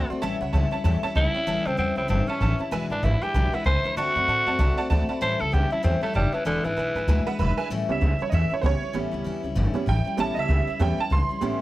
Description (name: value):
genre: rockabilly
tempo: 193 BPM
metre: 4/4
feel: swing 60% on 8ths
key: A mixolydian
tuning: A4 = 440 Hz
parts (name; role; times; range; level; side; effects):
- breathy tenor saxophone; melody; 0.0-7.3 s; D3 to C5; -25 LUFS; equal; none
- honky-tonk upright piano; accompaniment; 0.0-11.6 s; G3 to C6; -30 LUFS; right 5 dB; none
- picked steel-string acoustic guitar; accompaniment; 0.0-11.6 s; E2 to F#4; -30 LUFS; left 4 dB; none
- upright bass; bass; 0.0-11.5 s; E1 to A2; -24 LUFS; equal; none
room: little or no reverb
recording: none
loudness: -21 LUFS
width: side -16 dB against mid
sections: 0.0-7.7 A section; 7.7-11.6 B section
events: honky-tonk piano fill 4.3-5.2; honky-tonk piano solo 7.7-11.6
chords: 0.2 A7; 2.7 E7; 4.0 D7; 5.2 A7; 6.5 E7; 7.7 A7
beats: | 0.23 0.54 0.85 1.16 | 1.47 1.79 2.10 2.41 | 2.72 3.04 3.35 3.66 | 3.97 4.28 4.59 4.90 | 5.22 5.53 5.84 6.15 | 6.46 6.77 7.08 7.39 | 7.70 8.01 8.32 8.63 | 8.94 9.25 9.56 9.87 | 10.18 10.49 10.80 11.11 | 11.42